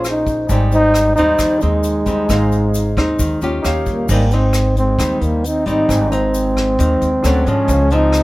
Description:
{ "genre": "bossa nova", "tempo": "133 BPM", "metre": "4/4", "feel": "straight", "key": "Ab major", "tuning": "A4 = 440 Hz", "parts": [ { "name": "breathy trombone", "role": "melody", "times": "0.0-8.2 s", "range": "Ab3 to Eb4", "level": "-17 LUFS", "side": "equal", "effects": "none" }, { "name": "bright reedy wooden-headed alto flute", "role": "second line", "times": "0.0-8.2 s", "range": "G3 to C5", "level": "-26 LUFS", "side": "right 4 dB", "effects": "none" }, { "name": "nylon-string guitar", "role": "accompaniment", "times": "0.0-8.2 s", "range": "Ab2 to C5", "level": "-22 LUFS", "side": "left 1 dB", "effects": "none" }, { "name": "warm baby grand piano", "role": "accompaniment", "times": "0.0-8.2 s", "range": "Db4 to Ab5", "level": "-27 LUFS", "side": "right 1 dB", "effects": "none" }, { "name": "upright bass", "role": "bass", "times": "0.0-8.2 s", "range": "Ab1 to Ab2", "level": "-18 LUFS", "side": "equal", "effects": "none" }, { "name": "vintage brush drum kit", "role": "drums", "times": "0.0-8.2 s", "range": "crash cymbal, hi-hat, kick drum, rim click", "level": "-24 LUFS", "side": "equal", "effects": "none" }, { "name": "tube shaker", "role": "percussion", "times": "0.0-8.2 s", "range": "none", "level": "-34 LUFS", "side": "left 5 dB", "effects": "none" } ], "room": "light reverb", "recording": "none", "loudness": "-13 LUFS", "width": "side -19 dB against mid", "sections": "0.0-4.1 A section; 4.1-8.2 B section", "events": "none", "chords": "0.5 Abmaj7; 3.6 Eb9; 4.1 Abmaj7; 7.2 Dmaj7; 7.7 Dbmaj7" }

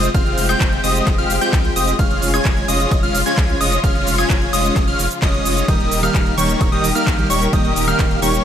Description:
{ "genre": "EDM, festival progressive house", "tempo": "130 BPM", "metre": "4/4", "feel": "straight", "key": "unclear", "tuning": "A4 = 440 Hz", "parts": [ { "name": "warm studio string section", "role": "sustained chords", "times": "0.0-8.4 s", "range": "C3 to G4", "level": "-25 LUFS", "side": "left 4 dB", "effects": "sidechain pumping" }, { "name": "plucky unison lead", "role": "arpeggios", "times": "0.0-8.4 s", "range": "Db6 to Ab6", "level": "-22 LUFS", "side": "equal", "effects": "cassette tape, sidechain pumping, tape echo" }, { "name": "supersaw chords", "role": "riff", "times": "0.0-8.4 s", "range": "G3 to Ab5", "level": "-21 LUFS", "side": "equal", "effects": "sidechain pumping, tape echo" }, { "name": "saturated sub bass", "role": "bass", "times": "0.0-8.4 s", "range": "Eb1 to C2", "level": "-23 LUFS", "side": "equal", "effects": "sidechain pumping" }, { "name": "house drum kit", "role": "drums", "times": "0.0-8.4 s", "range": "handclaps, hi-hat, ride cymbal, shaker, woodblock", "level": "-24 LUFS", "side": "equal", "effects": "none" }, { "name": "electronic kick drum", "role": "drums", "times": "0.1-8.1 s", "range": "none", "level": "-18 LUFS", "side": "equal", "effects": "none" }, { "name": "mellow electric guitar", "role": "accompaniment", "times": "5.7-8.3 s", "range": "Eb3 to G4", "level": "-24 LUFS", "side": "right 3 dB", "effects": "sidechain pumping, tape echo" } ], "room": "light reverb", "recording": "none", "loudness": "-14 LUFS", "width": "side -9 dB against mid", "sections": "0.0-8.4 A section", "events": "none", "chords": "0.0 Fm; 2.0 Db/F; 5.7 Eb" }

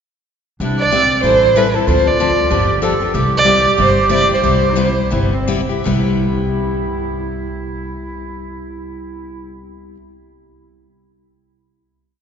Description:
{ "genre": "acoustic string swing (jazz manouche)", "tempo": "160-189 BPM", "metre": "4/4", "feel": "swing 58% on 8ths", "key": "C major", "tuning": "A4 = 440 Hz", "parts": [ { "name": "breathy clarinet", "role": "second line", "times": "0.6-9.6 s", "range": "C4 to A4", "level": "-21 LUFS", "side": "right 2 dB", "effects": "none" }, { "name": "picked steel-string acoustic guitar", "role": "accompaniment", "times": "0.6-10.0 s", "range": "C3 to A4", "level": "-20 LUFS", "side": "left 3 dB", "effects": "none" }, { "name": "upright bass", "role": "bass", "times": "0.6-9.9 s", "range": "G1 to D2", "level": "-21 LUFS", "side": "equal", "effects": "none" }, { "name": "dark violin", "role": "melody", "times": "0.8-5.5 s", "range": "A4 to D5", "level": "-15 LUFS", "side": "right 2 dB", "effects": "none" } ], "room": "wet church reverb, RT60 3.5 s", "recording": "recorded in a church or concert hall, nothing above 7.7 kHz", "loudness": "-13 LUFS", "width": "side -7 dB against mid", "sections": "0.6-5.8 A section; 5.8-8.9 final chord", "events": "slowing down 3.1-5.8", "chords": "0.6 Cmaj7; 1.2 Am7; 1.9 Dm7; 2.5 G7; 3.1 Cmaj7" }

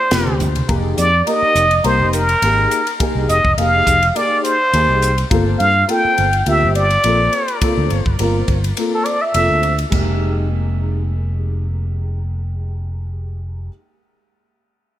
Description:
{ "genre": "electric jazz fusion", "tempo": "104 BPM", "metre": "4/4", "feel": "swing 54% on 16ths", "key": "F minor", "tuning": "A4 = 438 Hz", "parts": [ { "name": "trumpet with plunger mute", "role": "melody", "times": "0.0-9.8 s", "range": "A4 to G5", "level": "-16 LUFS", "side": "equal", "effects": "ping-pong delay" }, { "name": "dark baby grand piano", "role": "accompaniment", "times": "0.1-13.7 s", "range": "Ab3 to Bb4", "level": "-22 LUFS", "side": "left 1 dB", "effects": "ensemble chorus" }, { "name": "fingered electric bass", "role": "bass", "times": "0.1-13.7 s", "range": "F1 to G2", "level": "-19 LUFS", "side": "equal", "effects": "none" }, { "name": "crisp fusion drum kit", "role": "drums", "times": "0.1-10.1 s", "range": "crash cymbal, hi-hat, kick drum, ride cymbal, snare drum", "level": "-23 LUFS", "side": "equal", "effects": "gated reverb" }, { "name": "congas", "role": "percussion", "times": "0.1-0.7 s", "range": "none", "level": "-25 LUFS", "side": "right 1 dB", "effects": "none" } ], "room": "light reverb, small room ambience", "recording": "bright 1980s-style digital production", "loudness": "-14 LUFS", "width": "side -12 dB against mid", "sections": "0.0-9.9 A section; 9.9-12.2 B section", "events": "muted trumpet solo 0.0-9.9", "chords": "0.0 Gm11; 0.7 Fm11; 5.3 Gm11; 9.9 Fm11" }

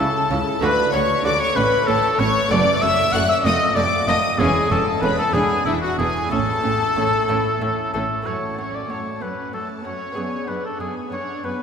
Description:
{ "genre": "classical, baroque-style concerto movement with solo episodes", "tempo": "63 BPM (dotted quarters)", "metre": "6/8", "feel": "straight", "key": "A major, F# minor from 8.3 s", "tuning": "A4 = 439 Hz", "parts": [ { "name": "clear chamber violin section", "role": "melody", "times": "0.0-11.6 s", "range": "E5 to F#6", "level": "-28 LUFS", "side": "left 5 dB", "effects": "none" }, { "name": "warm oboe", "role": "melody", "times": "0.0-11.6 s", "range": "E4 to F#5", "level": "-22 LUFS", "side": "left 1 dB", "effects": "none" }, { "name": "warm chamber violin section", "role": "second line", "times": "0.0-11.5 s", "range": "E4 to F#5", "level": "-24 LUFS", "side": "left 2 dB", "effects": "none" }, { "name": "lute", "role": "accompaniment", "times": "0.0-11.6 s", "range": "E2 to A4", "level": "-31 LUFS", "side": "equal", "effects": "none" }, { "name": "rich chamber viola section", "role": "accompaniment", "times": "0.0-11.6 s", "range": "A3 to F#4", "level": "-28 LUFS", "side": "right 2 dB", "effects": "none" }, { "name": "rich chamber cello section", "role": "bass", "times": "0.0-11.5 s", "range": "E2 to D3", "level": "-28 LUFS", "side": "right 3 dB", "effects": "none" }, { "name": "rich chamber double bass section", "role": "bass", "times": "0.0-8.0 s", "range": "E1 to D2", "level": "-27 LUFS", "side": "right 2 dB", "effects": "none" } ], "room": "wet cathedral reverb, RT60 4.9 s", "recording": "recorded in a church or concert hall", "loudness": "-18 LUFS", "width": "side -7 dB against mid", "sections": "0.0-8.3 A section; 8.3-11.6 B section", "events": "none", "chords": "0.0 A/C#; 0.6 D; 1.6 A; 2.5 D/F#; 3.4 F7; 4.4 A/E; 5.3 E5; 6.3 A; 8.3 F#m; 10.2 G#m7b5/F#" }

